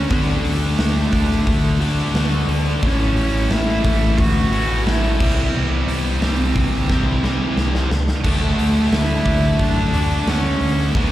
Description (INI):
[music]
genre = quiet-loud alternative rock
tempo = 89 BPM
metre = 4/4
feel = straight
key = unclear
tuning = A4 = 439 Hz
[part]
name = warm cello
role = melody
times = 0.0-11.1 s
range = A3 to F#4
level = -24 LUFS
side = right 2 dB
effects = slapback echo
[part]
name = distorted electric guitar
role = riff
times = 0.0-11.1 s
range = A2 to F#4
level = -23 LUFS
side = left 6 dB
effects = distortion, slapback echo
[part]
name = tight distorted guitar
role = riff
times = 0.0-11.1 s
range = A2 to D4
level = -26 LUFS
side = right 8 dB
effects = distortion
[part]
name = overdriven picked electric bass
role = bass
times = 0.0-11.1 s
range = A1 to F#2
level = -20 LUFS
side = equal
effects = none
[part]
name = huge arena drum kit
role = drums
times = 0.1-11.1 s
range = crash cymbal, hi-hat, kick drum, snare drum, splash cymbal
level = -22 LUFS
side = equal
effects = none
[sound]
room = light reverb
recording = live gig heard through the venue's PA, recital hall reverb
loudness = -16 LUFS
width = side -14 dB against mid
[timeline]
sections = 0.0-11.1 A section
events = drum fill 6.9-8.2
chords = 0.0 D; 2.8 A; 5.2 C; 8.2 D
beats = | 0.11 0.79 1.47 2.15 | 2.83 3.51 4.18 4.86 | 5.54 6.22 6.89 7.57 | 8.25 8.92 9.60 10.28 | 10.95